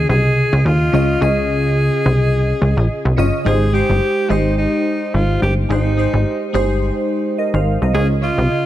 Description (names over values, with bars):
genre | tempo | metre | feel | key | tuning
afrobeats | 107 BPM | 4/4 | swing 55% on 16ths | Ab major | A4 = 438 Hz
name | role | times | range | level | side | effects
breathy alto saxophone | melody | 0.0-8.7 s | Eb4 to Ab4 | -20 LUFS | equal | ping-pong delay
glassy digital keys | accompaniment | 0.0-8.7 s | Db3 to F5 | -20 LUFS | equal | chorus
plucky analog bass | bass | 0.0-8.5 s | G1 to Eb2 | -16 LUFS | equal | none
room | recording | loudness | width
small room ambience | none | -14 LUFS | side -13 dB against mid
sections
0.0-3.5 A section; 3.5-8.7 B section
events
none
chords
0.0 Dbadd9; 3.5 Abmaj7; 7.9 Dbadd9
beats
0.09 0.65 | 1.22 1.77 2.34 2.90 | 3.46 4.02 4.58 5.14 | 5.70 6.26 6.82 7.38 | 7.94 8.50